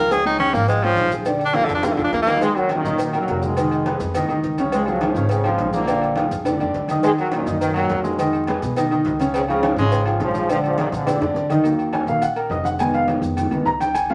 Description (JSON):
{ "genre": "latin, salsa", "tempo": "208 BPM", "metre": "4/4", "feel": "straight", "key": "Eb minor", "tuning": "A4 = 440 Hz", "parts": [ { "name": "clear tenor saxophone", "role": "melody", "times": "0.0-2.4 s", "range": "D3 to Bb4", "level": "-21 LUFS", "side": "equal", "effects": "none" }, { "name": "warm grand piano", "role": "accompaniment", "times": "0.0-14.1 s", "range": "Db3 to Bb5", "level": "-25 LUFS", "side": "equal", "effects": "none" }, { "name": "upright bass", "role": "bass", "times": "0.0-14.1 s", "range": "F1 to Cb3", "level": "-30 LUFS", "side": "equal", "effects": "none" }, { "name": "agogo bells and timbales", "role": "percussion", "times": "0.1-14.1 s", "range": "none", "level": "-29 LUFS", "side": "equal", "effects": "none" }, { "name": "congas", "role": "percussion", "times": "0.1-14.1 s", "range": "none", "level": "-31 LUFS", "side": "equal", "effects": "none" }, { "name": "cowbell and bongos", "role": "percussion", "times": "0.1-11.6 s", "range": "none", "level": "-32 LUFS", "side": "equal", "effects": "none" }, { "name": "maracas", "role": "percussion", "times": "0.1-14.1 s", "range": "none", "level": "-48 LUFS", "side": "equal", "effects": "none" }, { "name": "brilliant trombone section", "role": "melody", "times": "2.4-11.5 s", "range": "F2 to Bb3", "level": "-25 LUFS", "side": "equal", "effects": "none" } ], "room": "wet studio reverb, RT60 0.8 s", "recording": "vinyl crackle", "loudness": "-20 LUFS", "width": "mono", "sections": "0.0-2.4 A section; 2.4-11.6 B section; 11.6-14.1 A section", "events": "tenor saxophone solo 0.0-2.4; drum fill 1.7-2.4, 10.9-11.6; grand piano solo 11.6-14.1", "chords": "0.1 Db; 1.3 Bb7; 2.4 Ebm; 3.6 Fm7b5; 4.7 Db; 5.9 Bb7; 7.0 Ebm; 8.2 Fm7b5; 9.3 Db; 10.5 Bb7; 11.6 Ebm; 12.8 Fm7b5", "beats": "| 0.11 0.40 0.69 0.98 | 1.26 1.55 1.84 2.13 | 2.42 2.71 3.00 3.29 | 3.57 3.86 4.15 4.44 | 4.73 5.02 5.30 5.59 | 5.88 6.17 6.46 6.75 | 7.03 7.32 7.61 7.90 | 8.19 8.48 8.76 9.05 | 9.34 9.63 9.92 10.21 | 10.49 10.78 11.07 11.36 | 11.65 11.94 12.22 12.51 | 12.80 13.09 13.38 13.67 | 13.96" }